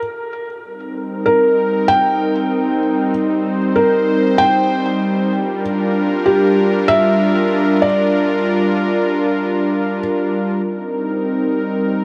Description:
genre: IDM.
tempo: 96 BPM.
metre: 4/4.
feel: swing 56% on 16ths.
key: C minor.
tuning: A4 = 440 Hz.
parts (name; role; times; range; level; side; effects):
warm analog pad; sustained chords; 0.6-12.0 s; G3 to C5; -19 LUFS; equal; chorus.
felt-muted upright piano; melody; 1.3-10.0 s; G4 to G5; -20 LUFS; equal; delay.
room: moderate huge ambient reverb, RT60 8.4 s.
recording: none.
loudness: -16 LUFS.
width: mono.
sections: 0.0-10.6 A section; 10.6-12.0 B section.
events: none.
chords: 0.0 N.C.; 0.6 Cm7; 5.3 Gm7; 10.6 Cm7.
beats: 0.02 | 0.65 1.27 1.90 2.52 | 3.15 3.77 4.40 5.02 | 5.65 6.27 6.90 7.52 | 8.15 8.77 9.40 10.02 | 10.65 11.27 11.90.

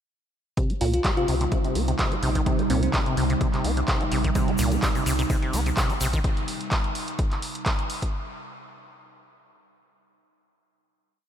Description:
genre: acid house.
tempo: 127 BPM.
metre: 4/4.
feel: swing 54% on 16ths.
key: C minor pentatonic.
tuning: A4 = 441 Hz.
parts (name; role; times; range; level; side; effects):
warbly tape-like pad; sustained chords; 1.3-8.1 s; C3 to Eb4; -30 LUFS; right 3 dB; chorus, built-in reverb, sidechain pumping.
acid bass, saw; riff; 0.6-6.2 s; Bb2 to Eb4; -29 LUFS; equal; sidechain pumping, tape echo.
electronic kick drum; drums; 0.6-8.1 s; none; -26 LUFS; equal; none.
punchy analog drum machine; drums; 0.6-8.1 s; handclaps, hi-hat; -30 LUFS; equal; none.
bell-like FM electric piano; melody; 0.8-2.9 s; C4 to F4; -30 LUFS; left 1 dB; chorus, analog delay.
warm sub bass; bass; 0.8-6.2 s; Bb1 to C2; -26 LUFS; equal; sidechain pumping.
tube shaker; percussion; 4.4-6.2 s; none; -36 LUFS; left 3 dB; none.
room: moderate huge ambient reverb, RT60 4.3 s.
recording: dreamy mix soaked in reverb.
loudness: -22 LUFS.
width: side -9 dB against mid.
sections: 0.6-8.1 groove.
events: filter sweep on acid bass 0.6-6.2.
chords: 0.6 Cm.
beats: | 0.57 1.05 1.52 1.99 | 2.46 2.94 3.41 3.88 | 4.35 4.83 5.30 5.77 | 6.24 6.72 7.19 7.66.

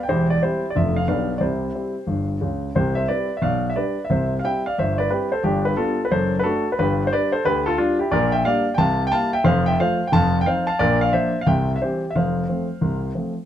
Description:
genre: jazz, stride piano.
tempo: 179 BPM.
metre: 4/4.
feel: swing 63% on 8ths.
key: C major, F major from 8.1 s.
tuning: A4 = 440 Hz.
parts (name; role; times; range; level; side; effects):
warm grand piano; solo; 0.0-13.3 s; E1 to A5; -18 LUFS; equal; none.
room: light reverb.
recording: close, detailed microphones.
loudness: -18 LUFS.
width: side -10 dB against mid.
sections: 0.0-2.8 A section; 2.8-13.5 A section.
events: none.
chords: 0.1 C/E; 0.7 Dm/F; 1.1 G7/B; 1.4 C; 3.4 G/B; 4.1 C; 5.4 G; 6.1 D/F#; 6.8 G; 8.1 Gm/Bb; 8.8 C7; 9.5 F; 10.1 F5; 10.8 Bb; 11.5 C; 12.1 F.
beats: | 0.07 0.40 0.74 1.07 | 1.41 1.75 2.08 2.42 | 2.75 3.09 3.42 3.76 | 4.10 4.43 4.77 5.10 | 5.44 5.77 6.11 6.44 | 6.78 7.11 7.45 7.78 | 8.12 8.45 8.79 9.12 | 9.45 9.79 10.12 10.46 | 10.79 11.12 11.46 11.79 | 12.13 12.46 12.79 13.13.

